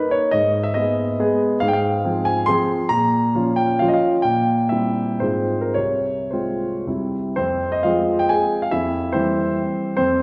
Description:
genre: classical, romantic triple-time dance for piano with dotted rhythms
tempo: 105-152 BPM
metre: 3/4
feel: rubato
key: F minor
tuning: A4 = 440 Hz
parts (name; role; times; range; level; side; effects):
- warm grand piano; solo; 0.0-10.2 s; C2 to C6; -20 LUFS; equal; none
room: wet recital hall reverb, RT60 1.6 s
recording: recorded in a church or concert hall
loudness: -20 LUFS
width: mono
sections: 0.0-7.4 A section; 7.4-10.2 B section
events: none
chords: 0.3 G#m; 1.6 Fm/Ab; 2.9 Bbm; 4.2 C7/Bb; 5.2 Fm/Ab; 5.8 Fm/C; 6.9 C; 7.4 Fm; 8.7 C/F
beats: | 0.34 0.75 1.18 | 1.61 2.04 2.48 | 2.90 3.35 3.81 | 4.25 4.71 5.23 | 5.76 6.32 6.87 | 7.38 7.84 8.31 | 8.73 9.14 9.58 | 9.99

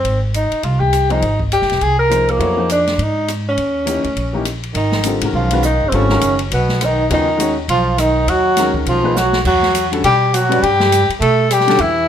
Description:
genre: modal jazz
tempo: 204 BPM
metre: 4/4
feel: swing 60% on 8ths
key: G# dorian from 4.7 s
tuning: A4 = 440 Hz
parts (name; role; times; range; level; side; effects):
- mellow tenor saxophone; melody; 0.0-12.1 s; Bb3 to Bb4; -16 LUFS; equal; plate reverb
- upright bass; bass; 0.0-12.1 s; E1 to B2; -20 LUFS; equal; none
- open jazz drum kit; drums; 0.0-11.9 s; crash cymbal, hi-hat, kick drum, ride cymbal, rim click, snare drum; -24 LUFS; left 1 dB; none
- warm upright piano; accompaniment; 1.1-11.8 s; C#3 to D5; -20 LUFS; left 4 dB; none
- bright trombone; second line; 4.7-12.1 s; B2 to A3; -21 LUFS; right 5 dB; none
room: moderate studio reverb, RT60 0.9 s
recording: none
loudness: -13 LUFS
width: side -9 dB against mid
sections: 0.0-4.7 A section; 4.7-12.1 B section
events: drum fill 9.2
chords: 0.0 Fm11; 3.6 Eb7b9; 4.7 G#m9; 9.4 Emadd9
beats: | 0.04 0.33 0.63 0.92 | 1.22 1.51 1.80 2.10 | 2.39 2.69 2.98 3.28 | 3.57 3.87 4.16 4.46 | 4.75 5.04 5.34 5.63 | 5.92 6.22 6.51 6.80 | 7.10 7.39 7.68 7.98 | 8.27 8.56 8.86 9.15 | 9.45 9.74 10.03 10.32 | 10.62 10.91 11.20 11.49 | 11.79 12.08

